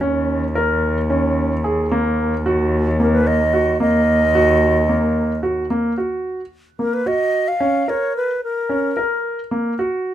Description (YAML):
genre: contemporary instrumental, chamber music in an uneven meter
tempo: 221 BPM (eighths)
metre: 7/8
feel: straight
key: Eb minor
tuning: A4 = 442 Hz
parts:
  - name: warm concert grand piano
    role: arpeggios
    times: 0.0-10.1 s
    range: Bb3 to Bb4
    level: -19 LUFS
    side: right 1 dB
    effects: none
  - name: muted cello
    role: bass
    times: 0.0-5.7 s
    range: Eb2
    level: -20 LUFS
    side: left 1 dB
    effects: none
  - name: bright baroque flute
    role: melody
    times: 3.0-9.2 s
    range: Bb4 to E#5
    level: -18 LUFS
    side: right 1 dB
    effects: none
room: light reverb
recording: none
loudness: -16 LUFS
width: side -11 dB against mid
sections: 0.0-5.7 A section; 5.7-10.1 A section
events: none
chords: 0.0 Bbm/Eb; 1.9 Ebm; 5.7 Bmaj7/A# (rootless); 7.6 Bbm; 9.5 Gb/Bb